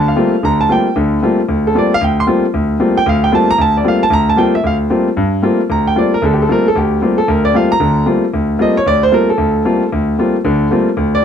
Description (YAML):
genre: jazz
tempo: 228 BPM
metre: 4/4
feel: swing 61% on 8ths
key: G minor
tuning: A4 = 437 Hz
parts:
  - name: clear concert grand piano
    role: solo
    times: 0.0-11.2 s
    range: D2 to C6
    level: -11 LUFS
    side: equal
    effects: none
room: light reverb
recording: dark, warm production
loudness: -11 LUFS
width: side -8 dB against mid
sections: 0.0-5.2 A section; 5.2-11.2 A section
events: none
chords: 0.0 Gm11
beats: 0.17 0.43 0.69 | 0.96 1.22 1.48 1.75 | 2.01 2.27 2.53 2.80 | 3.06 3.32 3.59 3.85 | 4.11 4.38 4.64 4.90 | 5.17 5.43 5.69 5.96 | 6.22 6.49 6.75 7.01 | 7.28 7.54 7.80 8.07 | 8.33 8.59 8.86 9.12 | 9.38 9.65 9.91 10.18 | 10.44 10.70 10.97 11.23